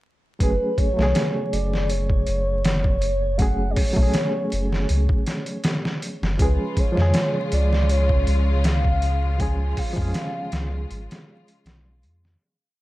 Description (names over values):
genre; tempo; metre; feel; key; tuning
trip hop; 80 BPM; 4/4; straight; F# harmonic minor; A4 = 440 Hz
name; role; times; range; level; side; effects
pure breathy sine lead; melody; 0.4-10.9 s; B4 to G#5; -28 LUFS; equal; wide subtle chorus, cassette tape, tape echo
barky reed electric piano; accompaniment; 0.4-12.4 s; C#3 to G#4; -28 LUFS; right 1 dB; overdrive, fast tremolo
warm sub bass; bass; 0.4-12.4 s; F#1 to E#2; -22 LUFS; equal; tube saturation
trip hop sampler-style drum kit; drums; 0.4-12.4 s; hi-hat, kick drum, snare drum; -23 LUFS; equal; none
rich symphonic string section; sustained chords; 6.4-12.4 s; C#3 to E#4; -32 LUFS; left 2 dB; none
room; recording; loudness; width
little or no reverb; dark, warm production, vinyl crackle; -19 LUFS; side -17 dB against mid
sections
0.4-12.4 groove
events
fade-out 8.4-12.4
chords
0.4 F#madd9; 6.4 C#